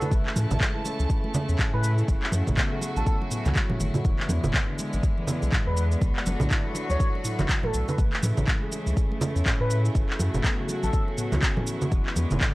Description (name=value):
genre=afro house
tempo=122 BPM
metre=4/4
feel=swing 59% on 16ths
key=F# minor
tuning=A4 = 439 Hz
part: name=expressive portamento lead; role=melody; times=0.0-11.0 s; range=A4 to C#5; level=-34 LUFS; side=equal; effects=wide subtle chorus, tape echo
part: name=rich chamber string section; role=sustained chords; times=0.0-12.5 s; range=C#3 to A5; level=-34 LUFS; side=equal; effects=sidechain pumping
part: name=handpan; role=arpeggios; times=0.0-12.5 s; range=C#3 to B4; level=-35 LUFS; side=equal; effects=sidechain pumping, tape echo
part: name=afro-pop drum kit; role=drums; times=0.0-12.5 s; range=handclaps, shaker, toms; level=-30 LUFS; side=equal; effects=none
part: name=congas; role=percussion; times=0.0-12.4 s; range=none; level=-30 LUFS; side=right 2 dB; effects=none
part: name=warm sub bass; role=bass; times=0.1-12.4 s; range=E1 to A2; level=-26 LUFS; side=equal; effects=sidechain pumping
part: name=electronic kick drum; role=drums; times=0.1-12.5 s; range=none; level=-25 LUFS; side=equal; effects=none
room=small room ambience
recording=dry, gritty hardware recording, cassette tape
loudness=-23 LUFS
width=side -20 dB against mid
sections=0.0-12.5 A section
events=drum fill 3.6-4.0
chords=0.1 A; 2.1 F#m7; 4.0 E7; 6.0 Bm7; 8.0 A; 10.0 F#m7; 11.9 E7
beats=| 0.12 0.61 1.10 1.59 | 2.08 2.58 3.07 3.56 | 4.05 4.54 5.03 5.53 | 6.02 6.51 7.00 7.49 | 7.99 8.48 8.97 9.46 | 9.95 10.44 10.94 11.43 | 11.92 12.41